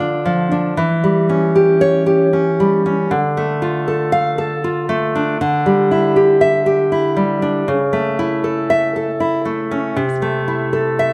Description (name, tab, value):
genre	romantic piece for solo classical guitar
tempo	78 BPM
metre	3/4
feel	rubato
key	D minor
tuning	A4 = 442 Hz
part	nylon-string guitar	solo	0.0-11.1 s	C3 to F5	-16 LUFS	equal	none
room	moderate recital hall reverb, RT60 1.6 s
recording	none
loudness	-16 LUFS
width	mono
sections	0.0-11.1 A section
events	none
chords	0.0 Dm; 0.8 C#dim/E; 3.1 Dm; 5.4 Dsus24; 7.7 A/C#; 10.0 Am/C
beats	| 0.77 1.55 2.34 | 3.12 3.89 4.64 | 5.40 6.15 6.90 | 7.67 8.44 9.20 | 9.96 10.74